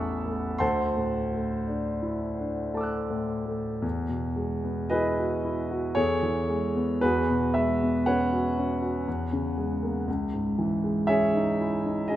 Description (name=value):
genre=classical, impressionist solo piano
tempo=57 BPM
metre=3/4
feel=uneven beats, rubato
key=E major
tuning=A4 = 440 Hz
part: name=warm concert grand piano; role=solo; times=0.0-12.2 s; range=A1 to F#6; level=-25 LUFS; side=equal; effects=none
room=moderate concert hall reverb, RT60 1.7 s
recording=none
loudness=-25 LUFS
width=side -13 dB against mid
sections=0.0-3.8 A section; 3.8-12.2 B section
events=none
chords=0.0 Aadd9; 0.6 D9; 3.8 Emaj9; 6.0 Amaj9/E; 7.0 E69; 9.1 F#add9/E; 10.1 C#madd9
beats=| 0.62 1.68 2.75 | 3.84 4.93 5.98 | 7.02 8.06 9.06 | 10.07 11.10 12.10